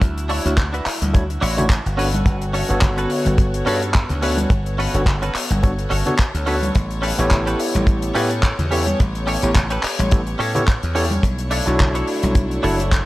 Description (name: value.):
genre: nu-disco, nu disco.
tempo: 107 BPM.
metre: 4/4.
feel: swing 56% on 16ths.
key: unclear.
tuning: A4 = 440 Hz.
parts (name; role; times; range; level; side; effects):
warm studio string section; sustained chords; 0.0-13.1 s; A3 to C#5; -29 LUFS; left 1 dB; sidechain pumping.
direct-recorded clean electric guitar; riff; 0.0-12.9 s; C#4 to C#5; -26 LUFS; right 2 dB; analog chorus, analog delay.
dry thumbed slap bass; bass; 0.0-13.0 s; F#1 to A2; -22 LUFS; equal; none.
damped 70s drum kit; drums; 0.0-13.0 s; handclaps, hi-hat; -25 LUFS; left 2 dB; studio reverb.
kick drum; drums; 0.0-13.0 s; none; -16 LUFS; equal; studio reverb.
overdriven tine electric piano; accompaniment; 0.4-12.8 s; D3 to C#5; -24 LUFS; equal; sidechain pumping, analog delay.
congas; percussion; 0.6-12.3 s; none; -28 LUFS; left 1 dB; none.
room: small room ambience.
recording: none.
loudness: -16 LUFS.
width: side -18 dB against mid.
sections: 0.0-13.1 A section.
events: none.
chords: 0.0 Dmaj9; 2.0 Gmaj9#11; 6.8 A9; 11.2 Bm11.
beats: | 0.02 0.58 1.14 1.70 | 2.26 2.83 3.39 3.95 | 4.51 5.07 5.63 6.19 | 6.75 7.31 7.87 8.43 | 8.99 9.55 10.12 10.68 | 11.24 11.80 12.36 12.92.